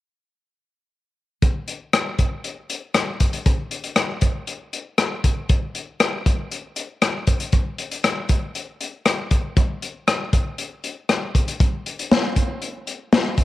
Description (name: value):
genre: rock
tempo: 118 BPM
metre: 4/4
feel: straight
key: none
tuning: none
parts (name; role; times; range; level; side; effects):
- crunchy breakbeat drum kit; drums; 1.4-13.4 s; hi-hat, kick drum, rim click, snare drum; -19 LUFS; left 1 dB; none
room: moderate spring reverb, RT60 1.7 s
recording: 1960s-style stereo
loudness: -20 LUFS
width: side -15 dB against mid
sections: 1.4-13.4 A section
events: none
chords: none